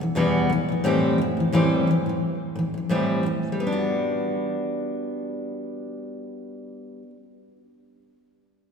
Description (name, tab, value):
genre	pop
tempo	88 BPM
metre	4/4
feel	swing 55% on 16ths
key	G major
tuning	A4 = 440 Hz
part	picked steel-string acoustic guitar	accompaniment	0.0-7.2 s	E2 to G4	-22 LUFS	left 1 dB	none
room	wet church reverb, RT60 3.4 s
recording	recorded in a church or concert hall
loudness	-22 LUFS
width	side -6 dB against mid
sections	0.0-3.6 A section; 3.6-6.3 B section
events	none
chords	0.5 Am7; 3.6 Gmaj7